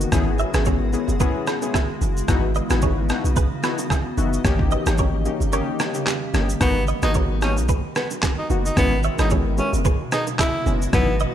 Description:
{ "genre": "afrobeats", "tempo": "111 BPM", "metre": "4/4", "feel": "swing 55% on 16ths", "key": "G# minor", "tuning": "A4 = 440 Hz", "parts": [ { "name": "warm analog keys", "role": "accompaniment", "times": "0.0-11.1 s", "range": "F#3 to G#4", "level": "-26 LUFS", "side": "left 5 dB", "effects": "chorus" }, { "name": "granular cloud pad", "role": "sustained chords", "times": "0.0-11.3 s", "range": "B2 to D#5", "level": "-30 LUFS", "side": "equal", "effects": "built-in reverb" }, { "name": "punchy sub bass", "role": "bass", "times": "0.0-11.3 s", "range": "F#1 to B1", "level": "-22 LUFS", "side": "equal", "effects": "none" }, { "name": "trip hop sampler-style drum kit", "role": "drums", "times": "0.0-11.3 s", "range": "handclaps, kick drum, rim click, shaker", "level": "-23 LUFS", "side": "equal", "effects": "none" }, { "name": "congas and bongos", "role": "percussion", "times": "0.1-11.1 s", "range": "none", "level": "-33 LUFS", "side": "right 11 dB", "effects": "none" }, { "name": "direct-recorded clean electric guitar", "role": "riff", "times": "0.4-11.3 s", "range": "D#4 to E5", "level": "-29 LUFS", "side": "right 5 dB", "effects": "wide subtle chorus, ping-pong delay" }, { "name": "clear tenor saxophone", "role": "melody", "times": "6.6-11.2 s", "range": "B3 to E4", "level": "-25 LUFS", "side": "equal", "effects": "ping-pong delay" } ], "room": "light reverb", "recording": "none", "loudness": "-18 LUFS", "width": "side -10 dB against mid", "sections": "0.0-6.6 A section; 6.6-11.3 B section", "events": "break 5.5-6.6", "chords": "0.1 F#9sus4; 2.3 C#m11/G#; 4.4 D#7; 6.6 G#m9; 8.8 F#9sus4", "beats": "| 0.12 0.66 1.20 1.74 | 2.28 2.82 3.36 3.90 | 4.45 4.99 5.53 6.07 | 6.61 7.15 7.69 8.23 | 8.77 9.31 9.85 10.39 | 10.93" }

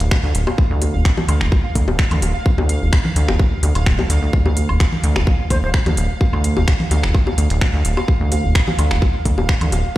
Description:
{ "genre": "minimal techno", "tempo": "128 BPM", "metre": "4/4", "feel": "straight", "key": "D minor", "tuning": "A4 = 445 Hz", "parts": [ { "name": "rubbery square bass", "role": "bass", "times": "0.0-9.8 s", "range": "D1 to D2", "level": "-16 LUFS", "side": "equal", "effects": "sidechain pumping" }, { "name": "minimal click drum kit", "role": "drums", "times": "0.0-9.8 s", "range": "finger snaps, hi-hat", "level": "-25 LUFS", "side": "equal", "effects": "none" }, { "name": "downlifter", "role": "sound effects", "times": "0.2-0.6 s", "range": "none", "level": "barely audible", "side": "none", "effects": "none" }, { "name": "pulsing gated texture", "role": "texture", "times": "0.0-10.0 s", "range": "F5", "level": "-29 LUFS", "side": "right 3 dB", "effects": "chorus, built-in reverb, sidechain pumping" }, { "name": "electronic kick drum", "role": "drums", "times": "0.1-10.0 s", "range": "none", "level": "-16 LUFS", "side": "equal", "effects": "none" }, { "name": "bongos, woodblock and congas", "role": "percussion", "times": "0.1-9.8 s", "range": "none", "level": "-25 LUFS", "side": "left 2 dB", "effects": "tape echo" }, { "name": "breathy bright jazz flute", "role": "melody", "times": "5.5-5.7 s", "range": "C5", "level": "-29 LUFS", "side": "left 1 dB", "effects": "tape echo" } ], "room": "little or no reverb", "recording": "played on a big sound system in a bare room, large studio reverb", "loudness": "-15 LUFS", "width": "side -16 dB against mid", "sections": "0.0-10.0 A section", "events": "none", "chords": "0.0 Dm", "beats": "0.11 | 0.58 1.05 1.52 1.99 | 2.46 2.93 3.40 3.86 | 4.33 4.80 5.27 5.74 | 6.21 6.68 7.14 7.61 | 8.08 8.55 9.02 9.49 | 9.96" }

